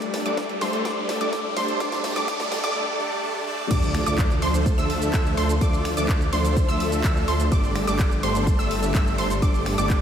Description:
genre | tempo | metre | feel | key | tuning
EDM, festival progressive house | 126 BPM | 4/4 | straight | D minor | A4 = 440 Hz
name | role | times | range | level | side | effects
wide unison pluck | arpeggios | 0.0-10.0 s | C6 to E6 | -29 LUFS | right 1 dB | sidechain pumping, diffuse ambient delay
supersaw chords | riff | 0.0-10.0 s | F3 to E5 | -25 LUFS | equal | wide subtle chorus, sidechain pumping, low-pass filter, diffuse ambient delay
detuned saw bass | bass | 0.0-10.0 s | G1 to D2 | -28 LUFS | equal | sidechain pumping, high-pass filter
house drum kit | drums | 0.0-10.0 s | crash cymbal, finger snaps, handclaps, hi-hat, ride cymbal, shaker, snare drum, toms | -32 LUFS | equal | high-pass filter on hats, small room reverb, high-pass filter on snare, high-pass filter on toms, high-pass filter on cymbals, high-pass filter on perc
riser and impact | sound effects | 0.0-5.6 s | none | -34 LUFS | equal | none
electronic kick drum | drums | 0.4-10.0 s | none | -22 LUFS | equal | high-pass filter on kick, small room reverb
room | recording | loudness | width
wet lush hall reverb, RT60 1.9 s, digital ambience | dreamy mix soaked in reverb, high-pass filter | -20 LUFS | side -9 dB against mid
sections
0.0-3.7 A section; 3.7-10.0 B section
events
build-up 0.0-3.7; drum fill 0.0-2.8, 3.4-3.7; riser 0.0-2.8; filter sweep on supersaw synth 0.0-3.7; drop 3.7-10.0; impact 3.7-5.6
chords
0.0 Gsus2; 3.7 Dm; 7.5 Gsus2

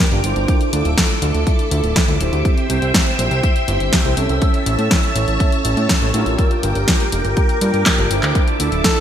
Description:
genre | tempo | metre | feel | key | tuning
italo disco | 122 BPM | 4/4 | straight | D minor | A4 = 440 Hz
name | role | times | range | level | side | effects
string machine, full ensemble | sustained chords | 0.0-9.0 s | A4 to E6 | -22 LUFS | equal | ensemble chorus
analog synth brass | stabs | 0.0-9.0 s | C4 to C#5 | -23 LUFS | right 3 dB | chorus, ping-pong delay
fat analog bass | bass | 0.1-8.8 s | D1 to A2 | -20 LUFS | equal | tube saturation
house drum kit | drums | 0.1-9.0 s | handclaps, hi-hat, snare drum | -20 LUFS | equal | gated reverb
electronic kick drum | drums | 0.5-8.9 s | none | -18 LUFS | equal | none
clear alto saxophone | melody | 8.8-9.0 s | A4 | -18 LUFS | right 1 dB | vintage 12-bit sampler grit
room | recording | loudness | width
moderate lush hall reverb, RT60 2.3 s | bright 1980s-style digital production | -14 LUFS | side -9 dB against mid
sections
0.0-9.0 A section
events
drum fill 7.9-8.4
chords
0.5 Dmadd9; 2.5 C; 4.4 A; 6.4 Gm7; 8.4 Dmadd9

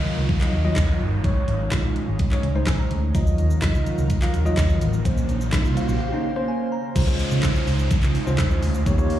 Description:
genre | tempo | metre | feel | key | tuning
dance-pop | 126 BPM | 4/4 | straight | Db major | A4 = 440 Hz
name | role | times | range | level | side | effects
bell-like tine electric piano | accompaniment | 0.0-9.2 s | Gb3 to Bb5 | -27 LUFS | left 2 dB | sidechain pumping
airy breathy pad | sustained chords | 0.0-9.2 s | Db3 to C5 | -30 LUFS | right 3 dB | chorus, sidechain pumping
vintage muted fingered electric bass | bass | 0.0-9.1 s | G1 to Db3 | -22 LUFS | equal | sidechain pumping
downlifter and riser | sound effects | 0.0-9.2 s | none | -34 LUFS | right 1 dB | none
smooth R&B drum kit | drums | 0.3-9.2 s | crash cymbal, handclaps, hi-hat, kick drum, shaker, snare drum | -22 LUFS | equal | none
room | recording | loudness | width
light reverb, digital ambience | played on a big sound system in a bare room, large studio reverb, small room ambience | -19 LUFS | side -12 dB against mid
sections
0.0-7.0 A section; 7.0-9.2 B section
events
tine electric piano fill 2.4-3.1, 5.5-7.0; riser 4.2-7.0; break 6.0-7.0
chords
0.0 Ebmadd9; 1.2 Absus4; 3.1 Ebmadd9; 5.1 Bbmadd9; 7.0 Dbmaj7

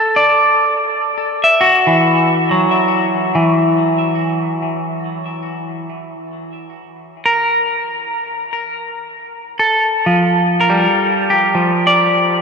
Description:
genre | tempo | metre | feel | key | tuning
ambient | free time | none | none | G dorian | A4 = 440 Hz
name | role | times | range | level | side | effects
clean electric guitar | solo | 0.0-12.4 s | E3 to E5 | -13 LUFS | equal | spring reverb, ping-pong delay
room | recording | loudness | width
wet huge ambient reverb, RT60 8.9 s | dark, warm production | -12 LUFS | side -5 dB against mid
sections
0.0-8.5 A section; 8.5-12.4 B section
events
none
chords
0.0 Dadd9; 3.4 Esus2; 6.0 N.C.; 8.5 Gm9

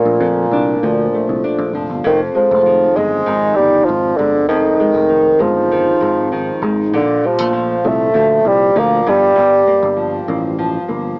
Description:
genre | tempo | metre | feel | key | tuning
indie pop | 98 BPM | 4/4 | straight | unclear | A4 = 441 Hz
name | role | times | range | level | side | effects
mellow bassoon | melody | 0.0-10.3 s | Bb2 to Bb3 | -13 LUFS | equal | wide subtle chorus
nylon-string guitar | accompaniment | 0.0-11.2 s | F2 to D4 | -19 LUFS | equal | wide subtle chorus, warbly pitch drift, cassette tape
picked electric bass | bass | 0.1-11.1 s | F1 to F2 | -22 LUFS | equal | none
room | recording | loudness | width
moderate small room ambience, RT60 0.5 s | home recording on cassette, AM radio sound | -12 LUFS | side -28 dB against mid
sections
0.0-2.0 A section; 2.0-11.2 B section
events
none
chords
0.0 Bbmaj7; 2.0 Fm7; 6.9 Bbmaj7; 9.1 Gm7

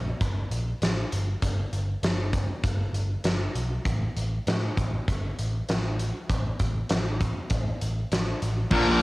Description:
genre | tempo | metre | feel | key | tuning
quiet-loud alternative rock | 99 BPM | 4/4 | straight | unclear | A4 = 436 Hz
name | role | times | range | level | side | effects
overdriven picked electric bass | bass | 0.0-9.0 s | G1 to A2 | -28 LUFS | equal | none
big rock drum kit | drums | 0.2-8.9 s | crash cymbal, hi-hat, kick drum, snare drum | -28 LUFS | equal | cassette tape
thick fuzz guitar | riff | 8.7-9.0 s | Bb2 to Bb4 | -19 LUFS | left 1 dB | distortion, cassette tape
room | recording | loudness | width
little or no reverb | home recording on cassette | -25 LUFS | side -20 dB against mid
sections
0.0-8.7 A section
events
none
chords
0.0 Gmadd9; 1.1 N.C.

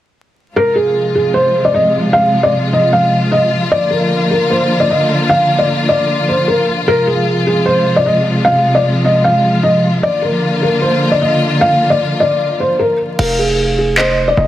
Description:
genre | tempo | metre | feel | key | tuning
hip hop, trap | 152 BPM | 4/4 | half-time | F dorian | A4 = 440 Hz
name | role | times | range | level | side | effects
felt-muted upright piano | melody | 0.6-14.5 s | Ab4 to F5 | -13 LUFS | equal | low-pass filter, tape echo
warm symphonic string section | sustained chords | 0.6-13.2 s | C3 to F4 | -15 LUFS | equal | none
glassy wavetable pluck | second line | 13.2-14.5 s | Eb5 to F5 | -22 LUFS | right 1 dB | chorus, tape echo
distorted 808-style bass | bass | 13.2-14.5 s | F1 | -17 LUFS | equal | distortion
trap drum kit | drums | 13.2-14.1 s | crash cymbal, handclaps | -18 LUFS | equal | overdrive
room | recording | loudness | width
light reverb, small room ambience | dense, heavily limited modern master, vinyl crackle | -11 LUFS | side -13 dB against mid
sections
0.6-13.2 A section; 13.2-14.5 B section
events
hi-hats muted 13.2-14.5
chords
0.6 Fm; 3.7 Bb; 6.9 Fm; 10.0 Bb; 13.2 Fm

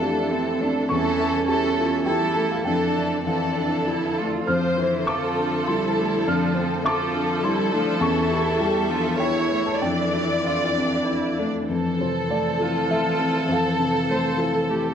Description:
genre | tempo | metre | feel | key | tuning
neoclassical piano and strings | 101 BPM | 3/4 | rubato | F major | A4 = 441 Hz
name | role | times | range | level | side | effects
rich chamber violin section | melody | 0.0-14.9 s | A4 to D5 | -25 LUFS | equal | none
dark cello | second line | 0.0-14.9 s | E3 to G4 | -28 LUFS | right 5 dB | none
dark upright piano | accompaniment | 0.0-14.9 s | E2 to F6 | -25 LUFS | left 2 dB | none
rich viola | accompaniment | 0.0-14.9 s | E3 to C5 | -30 LUFS | right 2 dB | none
rich chamber string section | sustained chords | 0.0-14.9 s | D3 to E5 | -33 LUFS | equal | none
room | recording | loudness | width
moderate concert hall reverb, RT60 1.9 s | dark, warm production | -20 LUFS | side -8 dB against mid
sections
0.0-11.7 A section; 11.7-14.9 B section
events
none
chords
0.0 Fmaj7; 0.9 A7/E; 2.7 Dmadd9/F; 4.5 Fmaj7; 8.0 A7/E; 9.8 Dmadd9/F

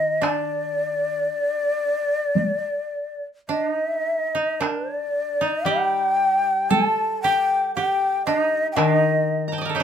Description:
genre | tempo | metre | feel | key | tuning
japanese traditional, Japanese chamber music | 52-60 BPM | 4/4 | rubato | D miyako bushi | A4 = 440 Hz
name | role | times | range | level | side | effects
breathy hollow shakuhachi | melody | 0.0-9.8 s | D5 to A5 | -21 LUFS | left 1 dB | none
koto | second line | 0.0-9.8 s | G3 to Bb5 | -26 LUFS | right 7 dB | none
koto | accompaniment | 0.0-9.8 s | Eb3 to G3 | -27 LUFS | left 4 dB | none
taiko ensemble | percussion | 0.2-9.0 s | none | -24 LUFS | right 1 dB | none
room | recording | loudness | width
wet studio ambience, RT60 0.5 s | none | -20 LUFS | side -8 dB against mid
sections
0.0-4.6 A section; 4.6-9.8 B section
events
none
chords
none

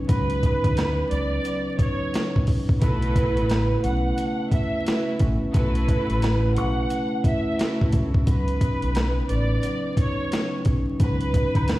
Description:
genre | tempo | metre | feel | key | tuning
hip hop, boom-bap hip-hop | 88 BPM | 4/4 | swing 62% on 16ths | unclear | A4 = 441 Hz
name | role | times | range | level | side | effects
vibraphone with soft mallets | accompaniment | 0.0-11.8 s | F#3 to B4 | -28 LUFS | left 1 dB | high-pass filter, low-pass filter
mellow tonewheel organ | sustained chords | 0.0-11.8 s | C#3 to E4 | -35 LUFS | right 1 dB | none
warm symphonic violin section | melody | 0.1-11.8 s | B4 to F#5 | -29 LUFS | right 2 dB | high-pass filter, low-pass filter, tape echo
deep dub fingered electric bass | bass | 0.1-11.8 s | A1 to D2 | -24 LUFS | equal | none
boom bap sampler-style drum kit | drums | 0.1-11.8 s | hi-hat, kick drum, snare drum | -23 LUFS | equal | none
tube shaker and woodblock | percussion | 0.1-11.8 s | none | -38 LUFS | right 3 dB | none
warm symphonic string section | stabs | 2.8-7.9 s | E4 to B4 | -35 LUFS | right 1 dB | high-pass filter, low-pass filter, tape echo
room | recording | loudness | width
light reverb | played on a big sound system in a bare room, stone room reverb, vinyl crackle | -20 LUFS | side -17 dB against mid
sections
0.0-11.8 A section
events
none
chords
0.0 C#9sus4; 2.8 B9sus4; 7.9 C#9sus4

